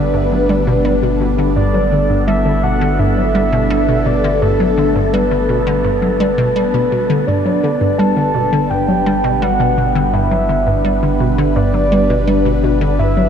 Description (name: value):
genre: ambient, sequencer-driven space music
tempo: 84 BPM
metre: 4/4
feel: straight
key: unclear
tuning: A4 = 438 Hz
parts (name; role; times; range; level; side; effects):
- soft octave-layered synth lead; melody; 0.0-13.3 s; A4 to A5; -18 LUFS; equal; chorus, ping-pong delay
- phased analog pad; sustained chords; 0.0-13.3 s; G3 to B4; -18 LUFS; equal; phaser, chorus
- hollow square pluck; riff; 0.0-13.2 s; G2 to G3; -18 LUFS; equal; chorus, ping-pong delay
- round analog bass; bass; 0.0-13.3 s; G1; -20 LUFS; equal; none
- wind-like tuned noise texture; texture; 0.0-7.3 s; A3 to A4; -30 LUFS; left 1 dB; built-in reverb
room: wet huge ambient reverb, RT60 7.2 s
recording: dark, warm production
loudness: -12 LUFS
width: side -8 dB against mid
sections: 0.0-7.3 A section; 7.3-13.3 B section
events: filter sweep on synth arpeggio sound 0.0-7.3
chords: 0.0 G